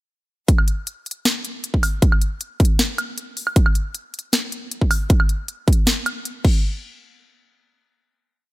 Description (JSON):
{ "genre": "future bass", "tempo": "156 BPM", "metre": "4/4", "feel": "half-time", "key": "none", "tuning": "none", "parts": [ { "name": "electronic kick drum", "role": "drums", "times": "0.5-6.5 s", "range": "none", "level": "-16 LUFS", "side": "equal", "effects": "overdrive" }, { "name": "trap drum kit", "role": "drums", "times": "0.5-6.5 s", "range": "crash cymbal, hi-hat, snare drum, woodblock", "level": "-22 LUFS", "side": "equal", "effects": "none" } ], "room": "little or no reverb", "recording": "none", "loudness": "-18 LUFS", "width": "side -19 dB against mid", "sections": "0.5-6.6 drop; 6.6-8.5 final hit", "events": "drop 0.5-6.6", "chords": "none" }